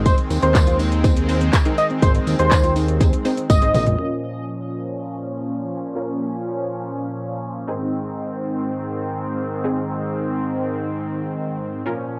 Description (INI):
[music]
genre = dance-pop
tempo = 122 BPM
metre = 4/4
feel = straight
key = unclear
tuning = A4 = 440 Hz
[part]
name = unison pluck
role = accompaniment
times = 0.0-12.2 s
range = C4 to C5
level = -30 LUFS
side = equal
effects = low-pass filter, cassette tape
[part]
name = soft supersaw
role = sustained chords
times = 0.0-12.2 s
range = Ab2 to Db4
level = -27 LUFS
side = equal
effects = phaser, sidechain pumping, low-pass filter, cassette tape
[part]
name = fat analog bass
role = bass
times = 0.0-4.0 s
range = Ab1 to Eb2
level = -22 LUFS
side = equal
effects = sidechain pumping
[part]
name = octave-doubled lead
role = melody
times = 0.1-3.8 s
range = C5 to Eb5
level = -24 LUFS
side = equal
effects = chorus, sidechain pumping, tape echo
[part]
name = electric guitar at the edge of break-up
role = riff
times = 0.1-3.9 s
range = Ab3 to F4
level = -31 LUFS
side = equal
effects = none
[part]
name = pop drum kit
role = drums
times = 0.1-4.0 s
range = handclaps, hi-hat, kick drum, shaker, toms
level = -20 LUFS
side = equal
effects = cassette tape
[part]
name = tambourine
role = percussion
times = 0.1-3.9 s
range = none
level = -39 LUFS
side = equal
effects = none
[sound]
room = moderate small room ambience, RT60 0.5 s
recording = home recording on cassette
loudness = -21 LUFS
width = mono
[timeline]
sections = 0.0-4.0 A section; 4.0-12.2 B section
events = drop 0.0-4.0; drum fill 3.5-4.0; filter sweep 4.0-12.2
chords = 0.0 Ab; 4.0 Bbm; 7.7 Ab